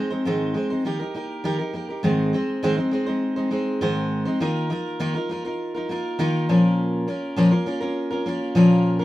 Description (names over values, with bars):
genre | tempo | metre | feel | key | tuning
pop | 101 BPM | 4/4 | straight | Ab major | A4 = 444 Hz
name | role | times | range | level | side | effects
picked steel-string acoustic guitar | solo | 0.0-9.0 s | Ab2 to C5 | -20 LUFS | equal | none
room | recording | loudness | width
moderate studio ambience, RT60 0.5 s | minimal, uncompressed stereo recording | -20 LUFS | side -16 dB against mid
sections
0.0-2.0 A section; 2.0-9.0 B section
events
none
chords
0.0 Ab; 0.9 Eb; 2.0 Ab; 4.4 Ebsus2; 6.5 Bbm